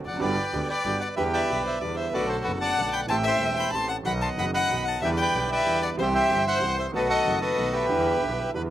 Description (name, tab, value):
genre	tango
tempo	187 BPM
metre	3/4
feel	rubato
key	E minor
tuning	A4 = 443 Hz
part	bright double bass	bass	0.0-8.7 s	E1 to E2	-33 LUFS	equal	none
part	bandoneon	melody	0.1-8.6 s	F#4 to C6	-26 LUFS	right 1 dB	slapback echo
part	warm violin	second line	0.1-8.5 s	F#4 to A5	-28 LUFS	left 4 dB	slapback echo
part	clear concert grand piano	accompaniment	0.1-8.7 s	E1 to G4	-31 LUFS	right 3 dB	slapback echo
room	little or no reverb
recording	recorded outdoors, with no room sound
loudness	-22 LUFS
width	side -12 dB against mid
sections	0.0-1.2 A section; 1.2-8.7 B section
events	none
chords	0.2 Gmaj7; 1.2 Em7; 2.1 Bm7; 3.1 Am7; 4.0 B; 5.0 Em7; 6.0 C; 6.9 B7; 7.9 Em7